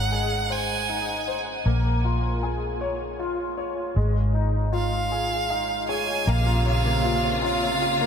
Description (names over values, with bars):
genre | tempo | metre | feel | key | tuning
six-eight pop ballad | 52 BPM (dotted quarters) | 6/8 | straight | Bb minor | A4 = 441 Hz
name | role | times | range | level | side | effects
clear violin | melody | 0.0-8.1 s | F5 to Ab5 | -27 LUFS | right 4 dB | tape echo
clear baby grand piano | accompaniment | 0.0-8.1 s | Ab3 to F5 | -28 LUFS | left 3 dB | ensemble chorus
vintage muted fingered electric bass | bass | 0.0-8.1 s | Ab1 to Bb1 | -25 LUFS | equal | none
rich studio string section | sustained chords | 6.3-8.1 s | C3 to F4 | -26 LUFS | left 1 dB | none
room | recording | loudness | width
moderate huge ambient reverb, RT60 8.5 s | dreamy mix soaked in reverb | -22 LUFS | side -7 dB against mid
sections
0.0-6.3 A section; 6.3-8.1 B section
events
grand piano fill 5.1-6.3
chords
0.0 Ab; 1.7 Bbm7; 4.0 Dbadd9/Ab; 6.3 Bbmadd9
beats
0.51 | 1.66 2.81 | 3.96 5.12 | 6.27 7.42